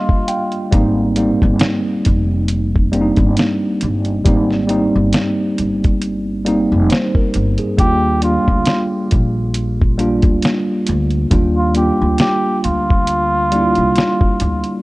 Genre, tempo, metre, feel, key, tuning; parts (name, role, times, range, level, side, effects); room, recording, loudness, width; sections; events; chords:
lo-fi hip hop; 68 BPM; 4/4; swing 56% on 16ths; Eb major; A4 = 440 Hz
trumpet with cup mute; melody; 0.0-0.7, 7.8-14.8 s; F4 to G4; -19 LUFS; equal; low-pass filter, tape echo
mellow tine electric piano; accompaniment; 0.0-14.8 s; G3 to G5; -17 LUFS; equal; medium stereo tremolo, cassette tape, low-pass filter
lo-fi sampler-style drum kit; drums; 0.1-14.8 s; hi-hat, kick drum, snare drum; -16 LUFS; equal
upright bass; bass; 0.7-14.6 s; F1 to Eb2; -19 LUFS; equal
light reverb, small room ambience; cassette tape; -13 LUFS; side -20 dB against mid
0.0-14.8 A section
break 0.0-0.7; tine electric piano fill 0.0-0.7
0.0 Ebmaj9; 0.7 Abmaj9; 7.8 Ebmaj9